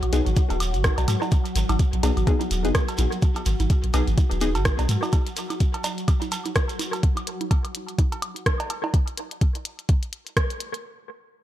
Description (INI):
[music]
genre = minimal techno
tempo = 126 BPM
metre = 4/4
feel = swing 58% on 16ths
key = unclear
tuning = A4 = 440 Hz
[part]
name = punchy sub bass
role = bass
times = 0.0-5.0 s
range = D#1 to G#2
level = -23 LUFS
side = equal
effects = tube saturation, sidechain pumping
[part]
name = minimal click drum kit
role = drums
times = 0.0-10.8 s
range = hi-hat, rim click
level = -29 LUFS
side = equal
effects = analog delay
[part]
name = woodblock, congas and cowbell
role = percussion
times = 0.0-8.9 s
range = none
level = -32 LUFS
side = right 3 dB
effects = analog delay
[part]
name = swarming drone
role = texture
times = 0.0-7.0 s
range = F#3 to F#4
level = -32 LUFS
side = equal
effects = built-in reverb, sidechain pumping
[part]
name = wavetable chord stab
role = stabs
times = 0.1-4.5 s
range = B3 to G#4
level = -29 LUFS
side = left 3 dB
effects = analog delay
[part]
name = shekere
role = percussion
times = 0.1-7.0 s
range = none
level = -36 LUFS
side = right 4 dB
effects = analog delay
[part]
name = electronic kick drum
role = drums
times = 0.4-10.5 s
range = none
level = -21 LUFS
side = equal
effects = none
[sound]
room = light reverb, digital ambience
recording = echo-heavy mix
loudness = -21 LUFS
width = side -13 dB against mid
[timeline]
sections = 0.0-10.8 A section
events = drop 0.0-10.8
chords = none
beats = 0.37 0.84 | 1.32 1.79 2.27 2.75 | 3.22 3.70 4.18 4.65 | 5.13 5.60 6.08 6.56 | 7.03 7.51 7.99 8.46 | 8.94 9.41 9.89 10.37